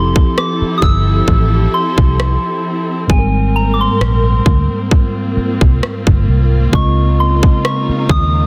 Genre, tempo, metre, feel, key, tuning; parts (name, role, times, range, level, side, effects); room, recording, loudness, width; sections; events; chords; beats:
contemporary R&B; 66 BPM; 4/4; swing 54% on 16ths; A4 = 436 Hz
soft synth bell; melody; 0.0-8.5 s; Ab5 to E6; -22 LUFS; equal; chorus, phaser, digital delay
mellow tine electric piano; accompaniment; 0.0-8.5 s; Ab2 to Eb5; -21 LUFS; equal
dark studio string section; sustained chords; 0.0-8.5 s; Db3 to Bb4; -25 LUFS; equal
vintage muted fingered electric bass; bass; 0.0-8.5 s; F1 to Eb2; -16 LUFS; equal
trap drum kit; drums; 0.2-8.3 s; kick drum, rim click; -15 LUFS; equal
little or no reverb; dense, heavily limited modern master; -13 LUFS; mono
0.0-8.5 A section
0.0 Fmaj9; 3.1 Abmaj9; 6.7 Dbmaj9
0.37 1.27 2.18 | 3.09 4.00 4.91 5.82 | 6.73 7.64